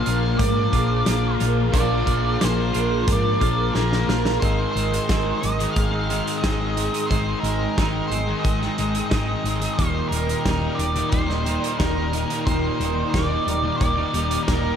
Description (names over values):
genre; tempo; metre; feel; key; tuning
rock, shoegaze and dream pop; 89 BPM; 4/4; straight; unclear; A4 = 443 Hz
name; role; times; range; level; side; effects
octave-fuzz lead guitar; melody; 0.0-14.8 s; Bb4 to F5; -27 LUFS; right 1 dB; distortion, tape echo
glassy FM pad; sustained chords; 0.0-14.8 s; Eb4 to C6; -31 LUFS; equal; ensemble chorus, built-in reverb, phaser
fingerpicked twelve-string acoustic guitar; arpeggios; 0.0-14.8 s; Eb2 to F4; -31 LUFS; right 8 dB; wide subtle chorus, tape echo
crunchy overdriven guitar; riff; 0.0-4.4 s; Bb2 to F4; -29 LUFS; equal; none
thick fuzz guitar; riff; 0.0-14.8 s; Eb2 to Bb3; -27 LUFS; left 8 dB; distortion, analog chorus
twangy electric guitar; riff; 0.0-14.8 s; Eb2 to F4; -29 LUFS; right 7 dB; reverse reverb
hollow-body short-scale fingered electric bass; bass; 0.1-14.7 s; Eb1 to Ab2; -25 LUFS; equal; none
loose indie drum kit; drums; 0.1-14.6 s; hi-hat, kick drum, snare drum; -25 LUFS; equal; none
room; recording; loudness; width
moderate lush hall reverb, RT60 2.1 s; dreamy mix soaked in reverb; -19 LUFS; side -8 dB against mid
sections
0.0-4.4 A section; 4.4-14.8 B section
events
drum fill 3.8-4.4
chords
0.0 Bb7; 4.4 Abmaj7; 9.8 Ebmaj7